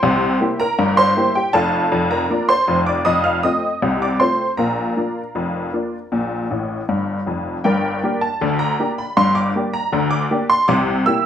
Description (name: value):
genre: ragtime piano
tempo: 79 BPM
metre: 2/4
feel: straight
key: Bb major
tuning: A4 = 441 Hz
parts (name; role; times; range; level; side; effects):
- honky-tonk upright piano; solo; 0.0-11.3 s; F1 to F6; -16 LUFS; equal; none
room: moderate club reverb, RT60 0.5 s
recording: none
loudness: -16 LUFS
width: side -9 dB against mid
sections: 0.0-7.6 A section; 7.6-11.3 A section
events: honky-tonk piano fill 6.5-7.6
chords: 0.0 C7; 1.5 Bb/F; 3.0 F7; 4.6 Bb; 7.6 Gm; 10.7 C7